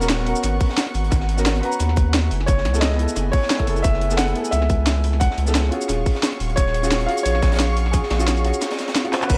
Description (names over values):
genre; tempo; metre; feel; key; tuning
liquid drum and bass; 176 BPM; 4/4; swing 54% on 16ths; unclear; A4 = 440 Hz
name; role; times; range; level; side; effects
warm grand piano; melody; 0.0-9.4 s; G#4 to F#5; -29 LUFS; equal; analog delay
felt-muted upright piano; accompaniment; 0.0-9.4 s; B3 to A#5; -29 LUFS; equal; analog delay
dark studio string section; sustained chords; 0.0-9.4 s; A3 to C#6; -33 LUFS; equal; none
saturated sub bass; bass; 0.0-9.4 s; D#1 to D#2; -23 LUFS; equal; none
crunchy breakbeat drum kit; drums; 0.0-9.4 s; hi-hat, snare drum; -34 LUFS; equal; high-pass filter on hats, small room reverb, high-pass filter on snare, high-pass filter on room, analog delay
drum and bass drum kit; drums; 0.0-9.4 s; crash cymbal, handclaps, hi-hat, shaker, snare drum; -27 LUFS; equal; small room reverb, analog delay
electronic kick drum; drums; 0.6-9.4 s; none; -21 LUFS; equal; small room reverb
room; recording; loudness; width
light reverb, small room ambience; echo-heavy mix; -20 LUFS; mono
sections
0.0-9.3 A section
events
drop 0.0-9.3; break 8.6-9.3; drum fill 9.1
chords
0.0 G#m11; 2.3 F#m11; 5.7 D#m11